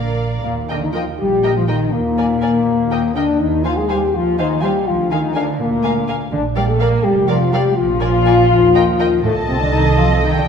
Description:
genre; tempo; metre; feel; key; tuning
quick classical-period movement for symphony orchestra; 82 BPM (dotted quarters); 6/8; rubato; Eb major; A4 = 439 Hz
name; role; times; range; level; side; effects
muted studio violin section; melody; 0.0-10.5 s; F5 to A5; -28 LUFS; left 3 dB; none
muted studio violin section; second line; 0.0-10.5 s; Bb4 to F5; -28 LUFS; equal; none
muted studio viola section; accompaniment; 0.0-10.5 s; Bb3 to C5; -28 LUFS; right 4 dB; none
muted studio cello section; bass; 0.0-10.5 s; A2 to Bb3; -22 LUFS; right 4 dB; none
muted studio double bass section; bass; 0.0-10.5 s; F1 to Eb2; -20 LUFS; right 3 dB; none
mellow French horn section; sustained chords; 0.4-10.4 s; A3 to Bb4; -16 LUFS; left 4 dB; none
room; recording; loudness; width
wet scoring stage reverb, RT60 1.5 s; minimal, uncompressed stereo recording; -14 LUFS; side -7 dB against mid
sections
0.4-10.5 A section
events
none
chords
0.4 Eb; 1.9 Bb7/Eb; 2.7 Eb; 3.4 Fm7/Eb; 4.9 Bb7/D; 6.3 Bb; 7.8 Bb7; 8.5 Eb; 9.2 Adim/C

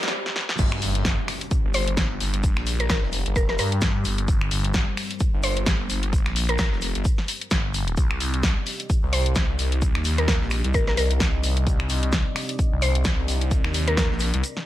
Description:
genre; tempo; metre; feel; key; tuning
bass house; 130 BPM; 4/4; swing 57% on 16ths; G minor; A4 = 440 Hz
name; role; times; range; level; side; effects
dark analog pad; sustained chords; 0.0-14.7 s; G3 to Eb5; -36 LUFS; left 1 dB; chorus, sidechain pumping
house drum kit; drums; 0.0-14.6 s; crash cymbal, finger snaps, hi-hat, snare drum; -27 LUFS; left 1 dB; none
riser and impact; sound effects; 0.0-2.4 s; none; -33 LUFS; equal; none
phased detuned saw bass; bass; 0.6-14.4 s; F1 to G2; -24 LUFS; equal; phaser, overdrive, sidechain pumping
electronic kick drum; drums; 0.6-14.1 s; none; -23 LUFS; equal; none
warm soul drum kit; drums; 0.6-14.6 s; hi-hat, shaker, snare drum; -40 LUFS; left 1 dB; none
mallet-like synth pluck; melody; 1.7-14.1 s; Bb4 to C5; -29 LUFS; left 1 dB; chorus, diffuse ambient delay
room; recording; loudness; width
light reverb; high-pass filter; -20 LUFS; side -14 dB against mid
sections
0.6-14.7 A section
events
break 0.1-0.6, 14.4; drum fill 0.2-0.6; drop 0.6-14.7; impact 0.6-2.4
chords
0.0 Gm; 8.0 Cmadd9

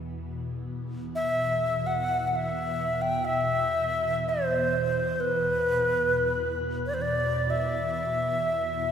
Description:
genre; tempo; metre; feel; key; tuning
world meditative, free-time meditation music; free time; none; none; unclear; A4 = 436 Hz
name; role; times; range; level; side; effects
ethereal airy pad; drone; 0.0-8.9 s; E2 to B2; -32 LUFS; right 1 dB; ensemble chorus, built-in reverb, phaser
breathy bright alto flute; melody; 1.2-8.9 s; B4 to G5; -25 LUFS; equal; shimmer reverb, tape echo
room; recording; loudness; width
wet lush hall reverb, RT60 2.5 s; dreamy mix soaked in reverb; -25 LUFS; side -8 dB against mid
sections
0.2-8.9 A section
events
none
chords
none

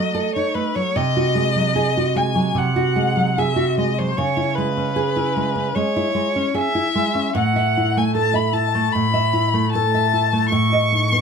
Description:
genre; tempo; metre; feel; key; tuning
romantic duo for violin and classical guitar; 76 BPM; 4/4; rubato; unclear; A4 = 440 Hz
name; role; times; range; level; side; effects
rich violin; melody; 0.0-11.2 s; B4 to C#6; -21 LUFS; left 4 dB; none
nylon-string guitar; accompaniment; 0.0-11.2 s; A2 to E5; -19 LUFS; right 2 dB; none
room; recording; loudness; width
moderate booth ambience, RT60 0.3 s; none; -17 LUFS; side -6 dB against mid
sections
0.0-11.2 A section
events
none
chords
0.0 B7; 1.0 G#7/B#; 4.2 C#m; 7.4 F#m11/A (rootless); 10.5 B7/A

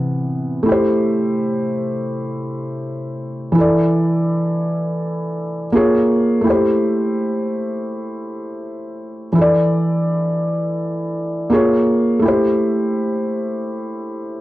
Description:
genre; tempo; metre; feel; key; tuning
hip hop; 83 BPM; 4/4; swing 61% on 16ths; unclear; A4 = 444 Hz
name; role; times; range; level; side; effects
felt-muted upright piano; solo; 0.0-14.4 s; C3 to D5; -16 LUFS; equal; cassette tape
room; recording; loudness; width
moderate studio reverb, RT60 0.6 s; dark, warm production; -16 LUFS; side -16 dB against mid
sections
0.7-14.4 A section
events
none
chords
0.0 Cmaj7; 0.7 Am7; 3.6 E7sus4; 5.7 Bbm7; 6.4 Am7; 9.3 E7sus4; 11.5 Bbm7; 12.2 Am7

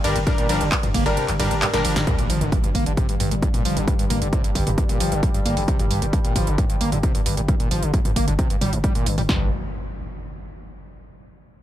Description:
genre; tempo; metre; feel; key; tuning
driving peak-time techno; 133 BPM; 4/4; straight; G minor; A4 = 441 Hz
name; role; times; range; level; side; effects
screaming distorted acid line; riff; 0.0-9.5 s; G2 to Bb3; -26 LUFS; equal; distortion, wide subtle chorus, sidechain pumping, tape echo
supersaw stab; stabs; 0.0-2.0 s; G3 to Bb4; -24 LUFS; left 2 dB; sidechain pumping, tape echo
growling 808-style bass; bass; 0.0-9.5 s; G1; -27 LUFS; equal; overdrive, sidechain pumping, low-pass filter
analog drone; drone; 0.0-9.3 s; G2 to G3; -30 LUFS; left 1 dB; chorus, sidechain pumping
techno drum kit; drums; 0.0-9.3 s; handclaps, hi-hat, ride cymbal, snare drum, toms; -27 LUFS; right 2 dB; none
techno drum kit; drums; 0.3-9.4 s; kick drum, snare drum; -21 LUFS; equal; none
impact; sound effects; 2.1-3.9, 9.3-11.1 s; none; -31 LUFS; equal; none
room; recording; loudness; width
light reverb; none; -18 LUFS; side -12 dB against mid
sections
0.0-2.1 A section; 2.1-9.3 B section; 9.3-11.1 C section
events
drop 0.0-2.1; kick drops out 1.2-2.1; drum fill 1.7-2.1; impact 2.1-3.9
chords
0.0 Gm; 9.3 N.C.

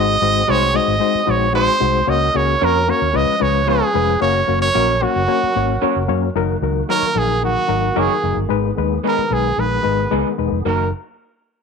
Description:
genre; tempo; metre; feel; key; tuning
soul; 112 BPM; 4/4; straight; F# major; A4 = 438 Hz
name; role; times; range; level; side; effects
clear trumpet; melody; 0.0-10.9 s; F#4 to D#5; -18 LUFS; right 3 dB; none
overdriven reed electric piano; accompaniment; 0.0-10.9 s; F#3 to C#5; -20 LUFS; left 14 dB; fast tremolo
percussive tonewheel organ; sustained chords; 0.0-10.9 s; D#3 to B4; -29 LUFS; right 2 dB; slow rotary speaker, overdrive, chorus vibrato
vintage muted fingered electric bass; bass; 0.0-10.9 s; E1 to F#2; -22 LUFS; right 2 dB; none
electric guitar through a small old amp; stabs; 0.5-10.8 s; G#3 to C#5; -22 LUFS; right 14 dB; lush chorus
room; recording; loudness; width
moderate spring reverb, RT60 1.1 s; 1960s-style stereo with parts hard left and right; -15 LUFS; side -5 dB against mid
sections
0.0-6.4 A section; 6.4-10.7 B section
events
none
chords
0.0 G#7; 2.1 F#/C#; 3.2 C#7; 4.2 F#; 6.4 F#6; 8.5 G#m; 10.7 F#6

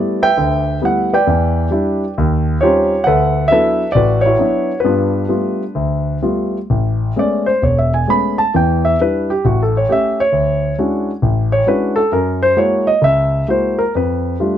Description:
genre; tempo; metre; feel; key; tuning
solo jazz; 133 BPM; 4/4; swing 67% on 8ths, rubato; A major; A4 = 440 Hz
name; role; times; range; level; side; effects
warm concert grand piano; solo; 0.0-14.6 s; E1 to B5; -13 LUFS; equal; none
room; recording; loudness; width
little or no reverb; close, detailed microphones; -13 LUFS; side -10 dB against mid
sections
0.0-6.7 A section; 6.7-14.6 B section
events
grand piano solo 6.7-14.6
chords
0.0 G69; 1.3 Em7; 2.2 D#13; 3.1 D69; 4.8 G9; 6.7 Amaj9; 8.5 Em7; 9.4 A7; 10.3 Dmaj9#11; 12.1 F#9; 13.9 F69

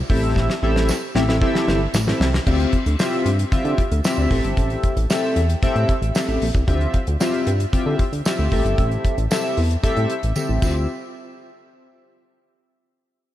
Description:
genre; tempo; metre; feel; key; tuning
early-eighties boogie funk; 114 BPM; 4/4; straight; D minor; A4 = 440 Hz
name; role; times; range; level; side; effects
chorused synth bass; bass; 0.0-10.9 s; G1 to D3; -20 LUFS; equal; none
chorused polysynth; accompaniment; 0.1-10.9 s; C4 to E5; -22 LUFS; left 1 dB; none
damped 70s drum kit; drums; 0.1-10.7 s; crash cymbal, hi-hat, kick drum, snare drum, toms; -22 LUFS; equal; none
tambourine; percussion; 0.9-10.9 s; none; -36 LUFS; right 5 dB; none
room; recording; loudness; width
light reverb, studio reverb; none; -17 LUFS; side -13 dB against mid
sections
0.0-2.5 A section; 2.5-10.9 B section; 10.9-13.0 C section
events
drum fill 0.4-2.5, 10.4-10.9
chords
0.1 Am7; 2.5 Dm11; 4.3 Am7; 6.7 Dm11; 8.5 Am7; 10.6 Dm11; 10.9 N.C.

